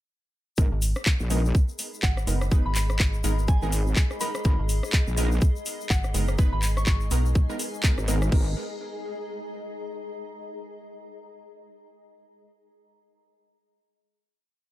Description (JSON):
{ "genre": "bass house", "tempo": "124 BPM", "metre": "4/4", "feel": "swing 58% on 16ths", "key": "G# minor", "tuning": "A4 = 440 Hz", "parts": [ { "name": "orchestra-hit-like synth stab", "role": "stabs", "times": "0.6-8.5 s", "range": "G#3 to B4", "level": "-34 LUFS", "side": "right 2 dB", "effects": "built-in reverb, cassette tape, sidechain pumping, tape echo" }, { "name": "wobble bass", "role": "bass", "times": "0.6-8.5 s", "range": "G#1 to A#1", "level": "-24 LUFS", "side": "equal", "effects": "chorus, overdrive, sidechain pumping" }, { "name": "electronic kick drum", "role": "drums", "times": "0.6-8.4 s", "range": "none", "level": "-22 LUFS", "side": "equal", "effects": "none" }, { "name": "tube shaker", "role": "percussion", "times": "0.6-8.3 s", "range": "none", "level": "-38 LUFS", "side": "left 5 dB", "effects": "none" }, { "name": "granular cloud pad", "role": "texture", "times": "1.9-10.2 s", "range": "G#4 to B5", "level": "-38 LUFS", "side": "left 2 dB", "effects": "built-in reverb, sidechain pumping" }, { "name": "metallic FM bass", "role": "bass", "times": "0.7-7.5 s", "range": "F#1 to B1", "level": "-26 LUFS", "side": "equal", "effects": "overdrive, sidechain pumping" }, { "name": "house drum kit", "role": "drums", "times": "0.8-8.4 s", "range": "crash cymbal, handclaps, hi-hat, rim click", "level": "-30 LUFS", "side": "equal", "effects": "overdrive" }, { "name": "soft synth bell", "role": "melody", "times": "2.0-7.0 s", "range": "F#5 to C#6", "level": "-37 LUFS", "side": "equal", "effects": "chorus, tape echo" } ], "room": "little or no reverb", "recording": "none", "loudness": "-22 LUFS", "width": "side -15 dB against mid", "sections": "0.6-8.3 drop; 8.3-10.3 final chord", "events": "drop 0.6-8.3", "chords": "0.6 G#madd9" }